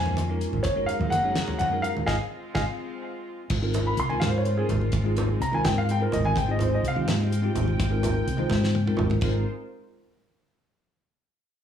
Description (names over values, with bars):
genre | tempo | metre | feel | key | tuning
electric jazz fusion | 84 BPM (dotted quarters) | 6/8 | straight | Ab mixolydian, Ab major from 3.5 s | A4 = 439 Hz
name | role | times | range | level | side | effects
warm grand piano | melody | 0.0-7.8 s | Ab4 to C6 | -28 LUFS | equal | tape echo
bell-like tine electric piano | accompaniment | 0.0-9.4 s | Ab3 to Db5 | -31 LUFS | equal | fast stereo tremolo
warm studio string section | sustained chords | 0.0-9.4 s | Gb3 to G5 | -37 LUFS | left 1 dB | none
hollow-body short-scale fingered electric bass | bass | 0.0-9.4 s | Gb1 to Ab2 | -26 LUFS | left 1 dB | none
congas | percussion | 0.1-9.4 s | none | -32 LUFS | right 6 dB | none
damped 70s drum kit | drums | 0.2-9.3 s | crash cymbal, hi-hat, kick drum, snare drum, toms | -30 LUFS | equal | none
room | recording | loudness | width
light reverb, small room reverb | studio reverb | -22 LUFS | side -9 dB against mid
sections
0.0-3.5 A section; 3.5-9.2 B section; 9.2-10.6 C section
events
band accent 2.1-3.5; drum fill 3.3, 8.5-9.2; grand piano solo 3.5-9.2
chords
0.0 Db69; 0.7 Gb6; 2.1 Ab6; 3.5 Ab69